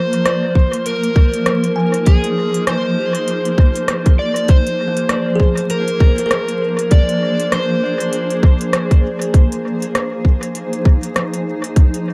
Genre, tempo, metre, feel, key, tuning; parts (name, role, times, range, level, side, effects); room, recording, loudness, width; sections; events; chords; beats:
ambient dub; 99 BPM; 4/4; swing 59% on 16ths; F dorian; A4 = 439 Hz
overdriven slide guitar; melody; 0.0-9.0 s; Ab4 to D5; -23 LUFS; equal; dub echo
granular cloud pad; sustained chords; 0.0-12.1 s; F3 to C5; -23 LUFS; equal; built-in reverb
organic electronic drum kit; drums; 0.1-12.0 s; hi-hat, rim click; -24 LUFS; equal; dub echo
electronic kick drum; drums; 0.6-11.9 s; -13 LUFS; equal
kalimba; arpeggios; 1.8-8.4 s; Bb3 to Ab5; -29 LUFS; equal; dub echo
light reverb, digital ambience; echo-heavy mix, vinyl crackle; -16 LUFS; mono
0.0-12.1 A section
0.0 Fm7; 9.3 Ab/F
0.25 0.86 1.46 | 2.07 2.67 3.28 3.89 | 4.49 5.10 5.71 6.31 | 6.92 7.52 8.13 8.73 | 9.34 9.95 10.55 11.16 | 11.77